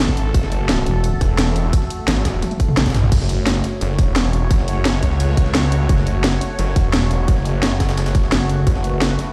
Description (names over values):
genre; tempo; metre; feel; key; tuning
dark technical drum and bass; 173 BPM; 4/4; straight; F# minor; A4 = 440 Hz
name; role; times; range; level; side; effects
sweeping resonant pad; sustained chords; 0.0-9.3 s; A3 to C#5; -29 LUFS; equal; chorus, sidechain pumping
snarling distorted saw bass; bass; 0.0-9.2 s; E1 to C#2; -21 LUFS; equal; distortion, overdrive, sidechain pumping
breakbeat sampler-style drum kit; drums; 0.0-9.3 s; hi-hat, snare drum; -34 LUFS; equal; none
drum and bass drum kit; drums; 0.0-9.3 s; crash cymbal, hi-hat, snare drum, toms; -23 LUFS; equal; none
electronic kick drum; drums; 0.1-8.7 s; none; -19 LUFS; equal; none
growling FM bass; bass; 0.9-1.2, 8.3-8.7 s; E1 to F#1; -20 LUFS; equal; tube saturation
room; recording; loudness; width
digital ambience; played on a big sound system in a bare room, stone room reverb; -18 LUFS; mono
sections
0.0-3.1 A section; 3.1-9.3 A section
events
drop 0.0-3.1, 3.1-9.3; drum fill 2.4-3.1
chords
0.0 F#m